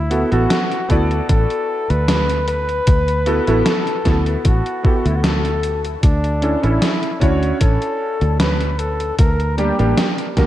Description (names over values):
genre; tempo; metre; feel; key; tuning
vaporwave; 76 BPM; 4/4; swing 53% on 16ths; D major; A4 = 442 Hz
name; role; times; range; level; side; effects
mellow flugelhorn; melody; 0.0-10.5 s; D4 to B4; -22 LUFS; left 1 dB; tape echo
fingered electric bass; bass; 0.0-10.5 s; A1 to D2; -19 LUFS; equal; none
warm electric grand piano; accompaniment; 0.1-10.5 s; G3 to D5; -21 LUFS; right 1 dB; lush chorus, vintage 12-bit sampler grit, tape echo
gated 80s digital drum machine; drums; 0.1-10.5 s; hi-hat, snare drum; -22 LUFS; equal; gated reverb, gated reverb snare, overdrive
electronic kick drum; drums; 0.9-10.5 s; none; -16 LUFS; equal; overdrive
room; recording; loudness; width
moderate plate reverb, RT60 2.5 s; dreamy mix soaked in reverb, cassette tape; -15 LUFS; side -13 dB against mid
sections
0.0-10.5 A section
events
none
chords
0.0 D69; 6.0 Aadd11; 9.2 Gm